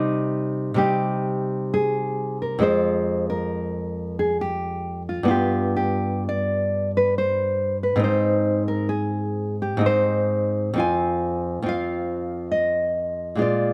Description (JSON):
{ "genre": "romantic duo for nylon-string guitar and classical guitar", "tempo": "58-71 BPM", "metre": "3/4", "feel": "rubato", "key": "unclear", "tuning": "A4 = 440 Hz", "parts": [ { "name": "nylon-string guitar", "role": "accompaniment", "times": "0.0-13.7 s", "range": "F2 to F4", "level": "-26 LUFS", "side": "equal", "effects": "none" }, { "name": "nylon-string guitar", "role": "melody", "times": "0.8-13.7 s", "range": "F4 to Ab5", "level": "-26 LUFS", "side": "equal", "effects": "none" } ], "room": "light reverb", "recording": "close, detailed microphones", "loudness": "-23 LUFS", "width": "mono", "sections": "0.0-13.7 A section", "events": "none", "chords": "0.0 Cm; 2.6 Fm; 5.3 G7; 8.0 Ab; 10.8 Fm" }